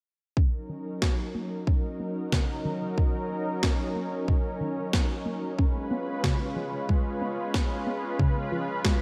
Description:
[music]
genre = synthwave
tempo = 92 BPM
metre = 4/4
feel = straight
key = Eb minor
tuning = A4 = 437 Hz
[part]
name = lush unison pad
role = sustained chords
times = 0.4-9.0 s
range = Gb3 to Cb5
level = -34 LUFS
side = equal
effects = chorus
[part]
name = warbly dusty pluck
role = arpeggios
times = 0.4-9.0 s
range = Db3 to Db4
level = -37 LUFS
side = equal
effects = chorus, tape echo
[part]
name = electronic kick drum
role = drums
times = 0.4-9.0 s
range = none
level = -28 LUFS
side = equal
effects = none
[part]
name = electronic snare drum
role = drums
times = 1.0-9.0 s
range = none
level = -34 LUFS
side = equal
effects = gated reverb
[sound]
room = light reverb, digital ambience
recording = none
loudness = -28 LUFS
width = mono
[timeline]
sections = 0.4-9.0 A section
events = none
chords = 0.4 Ebm7; 5.6 Db7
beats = | 0.37 1.02 1.67 2.33 | 2.98 3.63 4.28 4.93 | 5.59 6.24 6.89 7.54 | 8.20 8.85

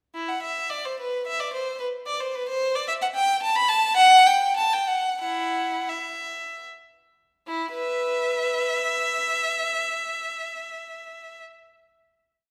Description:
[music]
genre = classical, baroque-style suite movement for unaccompanied violin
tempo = 71-113 BPM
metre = 3/4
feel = rubato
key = E minor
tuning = A4 = 441 Hz
[part]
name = clear violin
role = solo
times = 0.1-11.4 s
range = E4 to B5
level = -24 LUFS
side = equal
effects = none
[sound]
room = wet recital hall reverb, RT60 1.5 s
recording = recorded in a church or concert hall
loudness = -24 LUFS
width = mono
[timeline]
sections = 0.2-7.5 A section; 7.5-12.5 final chord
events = slowing down 2.6-7.5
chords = none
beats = | 0.15 0.71 1.26 | 1.80 2.33 2.86 | 3.40 3.96 4.56 | 5.21 5.91 6.66 | 7.49 8.31 9.14 | 9.97 10.80

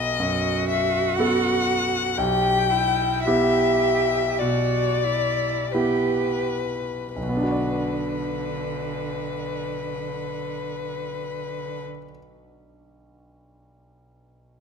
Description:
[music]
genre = classical, slow romantic movement for piano trio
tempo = 39-61 BPM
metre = 4/4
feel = rubato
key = B minor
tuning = A4 = 440 Hz
[part]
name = warm violin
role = melody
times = 0.0-11.8 s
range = B4 to G5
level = -25 LUFS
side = left 9 dB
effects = none
[part]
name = clear concert grand piano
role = accompaniment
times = 0.0-14.6 s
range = B1 to D5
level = -26 LUFS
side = right 1 dB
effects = none
[part]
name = clear cello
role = second line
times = 0.2-11.8 s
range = D3 to G4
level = -27 LUFS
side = right 8 dB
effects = none
[sound]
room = moderate recital hall reverb, RT60 1.8 s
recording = close, detailed microphones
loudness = -21 LUFS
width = side -6 dB against mid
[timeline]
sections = 0.0-7.2 A section; 7.2-12.2 B section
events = slowing down 0.0-7.2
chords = 0.0 B7; 2.2 Em/B; 7.2 Bm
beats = 0.19 1.19 | 2.18 3.25 4.40 5.73 | 7.16 8.40 9.65 10.93

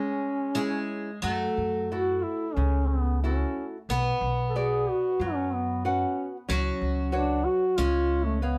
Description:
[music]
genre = fado-style ballad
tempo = 92 BPM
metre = 4/4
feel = rubato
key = F# minor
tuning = A4 = 441 Hz
[part]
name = dark duduk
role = melody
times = 0.0-8.6 s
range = A3 to A4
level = -30 LUFS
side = equal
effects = none
[part]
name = picked twelve-string acoustic guitar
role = second line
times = 0.0-8.6 s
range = F#3 to C#4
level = -36 LUFS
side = equal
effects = none
[part]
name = nylon-string guitar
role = accompaniment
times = 0.0-8.6 s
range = C#3 to F#5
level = -35 LUFS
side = equal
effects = none
[part]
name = upright bass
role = bass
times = 1.2-8.6 s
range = B1 to F#2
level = -31 LUFS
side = equal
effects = none
[sound]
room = light reverb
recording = none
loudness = -27 LUFS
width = mono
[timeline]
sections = 0.0-8.6 A section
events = none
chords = 0.0 C#m; 1.2 F#m7; 3.9 Bm; 6.5 C#7sus4; 7.8 C#7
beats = 0.56 | 1.24 1.91 2.58 3.24 | 3.89 4.55 5.20 5.85 | 6.49 7.12 7.76 8.42

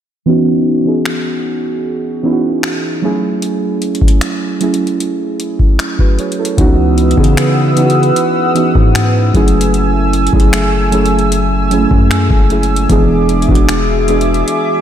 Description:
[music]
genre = contemporary R&B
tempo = 76 BPM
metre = 4/4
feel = straight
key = C# minor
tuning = A4 = 445 Hz
[part]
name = muted felt-like synth keys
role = accompaniment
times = 0.3-14.8 s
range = E3 to C#5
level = -14 LUFS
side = right 2 dB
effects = chorus, low-pass filter
[part]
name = booming analog drum machine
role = drums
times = 1.1-14.7 s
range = finger snaps, hi-hat, kick drum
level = -15 LUFS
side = left 1 dB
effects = none
[part]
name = chorused pulse-width pad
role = sustained chords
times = 6.6-14.8 s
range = A3 to E6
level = -17 LUFS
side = equal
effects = none
[part]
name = long sustained 808-style bass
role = bass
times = 6.6-14.4 s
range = E1 to C#3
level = -15 LUFS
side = left 1 dB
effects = none
[sound]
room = moderate lush hall reverb, RT60 2.8 s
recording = dreamy mix soaked in reverb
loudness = -10 LUFS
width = side -10 dB against mid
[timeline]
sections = 0.3-6.6 A section; 6.6-14.8 B section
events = filter sweep on synth keys 0.3-6.6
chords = 0.3 C#m11; 3.0 F#m9; 6.6 C#m11; 9.3 F#m9; 12.9 E7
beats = | 0.27 1.05 1.84 2.63 | 3.42 4.21 5.00 5.79 | 6.58 7.37 8.16 8.95 | 9.74 10.53 11.32 12.11 | 12.90 13.69 14.47

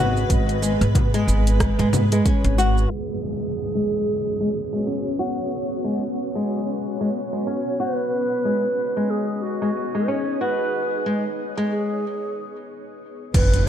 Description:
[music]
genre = organic downtempo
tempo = 92 BPM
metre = 4/4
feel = swing 58% on 16ths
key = G# minor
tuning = A4 = 440 Hz
[part]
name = granular cloud pad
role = sustained chords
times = 0.0-13.7 s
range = G#3 to D#5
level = -28 LUFS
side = equal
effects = built-in reverb, sidechain pumping
[part]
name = flamenco guitar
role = arpeggios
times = 0.0-12.0 s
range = G#3 to F#4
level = -25 LUFS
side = left 2 dB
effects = low-pass filter, ping-pong delay
[part]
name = upright bass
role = bass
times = 0.0-2.8, 13.3-13.7 s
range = F#1 to G#2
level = -20 LUFS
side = equal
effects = sidechain pumping
[part]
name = deep house drum kit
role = drums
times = 0.2-2.9, 13.3-13.6 s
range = congas, crash cymbal, hi-hat, rim click, shaker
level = -26 LUFS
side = left 2 dB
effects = none
[part]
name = electronic kick drum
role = drums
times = 0.3-2.4, 13.3-13.5 s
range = none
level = -20 LUFS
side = equal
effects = none
[part]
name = breathy low ney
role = melody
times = 2.9-13.7 s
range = F#4 to C#5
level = -27 LUFS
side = right 2 dB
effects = ping-pong delay
[part]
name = downlifter and impact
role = sound effects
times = 2.9-8.1, 13.3-13.7 s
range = none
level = -30 LUFS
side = right 1 dB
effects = none
[sound]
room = moderate lush hall reverb, RT60 1.6 s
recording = dark, warm production, low-pass filter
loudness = -20 LUFS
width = side -10 dB against mid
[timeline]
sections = 0.0-2.9 A section; 2.9-13.3 B section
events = filter sweep on nylon-string guitar 2.9-13.3; filter sweep on ambient pad 2.9-13.3; filter sweep 2.9-13.3; break 12.0-13.3; impact 13.3-13.7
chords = 0.0 G#m; 2.9 F#sus4; 8.1 G#m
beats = | 0.30 0.95 1.60 2.25 | 2.91 3.56 4.21 4.86 | 5.51 6.17 6.82 7.47 | 8.12 8.78 9.43 10.08 | 10.73 11.38 12.04 12.69 | 13.34

